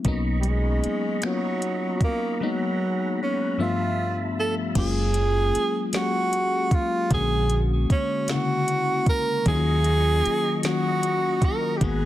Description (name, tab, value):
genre	slow six-eight R&B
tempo	51 BPM (dotted quarters)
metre	6/8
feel	straight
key	F# major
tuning	A4 = 440 Hz
part	FM electric piano	accompaniment	0.0-12.1 s	G2 to E5	-27 LUFS	left 4 dB	chorus
part	smooth R&B drum kit	drums	0.0-12.0 s	crash cymbal, finger snaps, hi-hat, kick drum, snare drum	-25 LUFS	equal	soft clipping on snare
part	tonewheel organ	sustained chords	0.1-4.7, 9.5-12.1 s	F#3 to C#6	-35 LUFS	right 1 dB	overdrive, chorus vibrato, slow rotary speaker
part	deep dub fingered electric bass	bass	0.1-0.9, 4.8-12.1 s	F#1 to D#2	-23 LUFS	equal	none
part	breathy tenor saxophone	melody	0.4-12.1 s	F#3 to A#4	-25 LUFS	right 2 dB	none
room	little or no reverb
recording	dense, heavily limited modern master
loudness	-21 LUFS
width	side -14 dB against mid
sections	0.0-4.8 A section; 4.8-12.1 B section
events	none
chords	0.1 Bmaj9; 2.4 G#m9; 3.6 G13; 4.8 F#maj7; 7.1 A#7alt; 9.5 D#m7